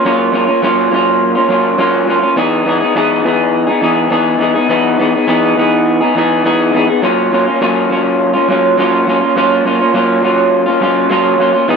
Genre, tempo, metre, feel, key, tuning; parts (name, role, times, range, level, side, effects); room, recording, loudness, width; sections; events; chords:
indie pop; 103 BPM; 4/4; straight; A4 = 440 Hz
electric guitar through a small old amp; solo; 0.0-11.8 s; E3 to G#4; -10 LUFS; equal; lush chorus, warbly pitch drift
moderate studio reverb, RT60 0.5 s; -10 LUFS; side -5 dB against mid
0.0-11.8 A section
0.0 Gbmaj7; 2.4 Emaj7; 7.0 Gbmaj7